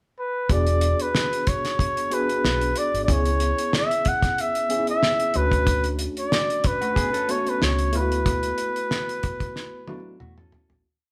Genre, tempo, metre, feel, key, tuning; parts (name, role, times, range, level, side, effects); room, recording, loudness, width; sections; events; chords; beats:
lush 1970s-style soul; 93 BPM; 4/4; swing 54% on 16ths; A4 = 441 Hz
clear flugelhorn; melody; 0.2-10.2 s; B4 to F#5; -26 LUFS; equal
tine electric piano; accompaniment; 0.5-10.9 s; A3 to G#4; -32 LUFS; equal; overdrive
vintage muted fingered electric bass; bass; 0.5-10.8 s; E1 to E2; -26 LUFS; equal
damped 70s drum kit; drums; 0.5-10.8 s; hi-hat, kick drum, snare drum, toms; -28 LUFS; equal
mellow electric guitar; riff; 6.8-10.8 s; F#3 to A4; -36 LUFS; equal
moderate studio reverb, RT60 0.8 s; band playing live in one room; -23 LUFS; mono
0.0-0.5 pickup bar; 0.5-10.8 A section
fade-out 8.3-10.8; drum fill 9.6-10.8
0.5 E7; 3.1 C#m7; 5.3 Bm9/D; 7.9 D6
| 0.49 1.14 1.79 2.43 | 3.08 3.73 4.37 5.02 | 5.67 6.32 6.96 7.61 | 8.26 8.90 9.55 10.20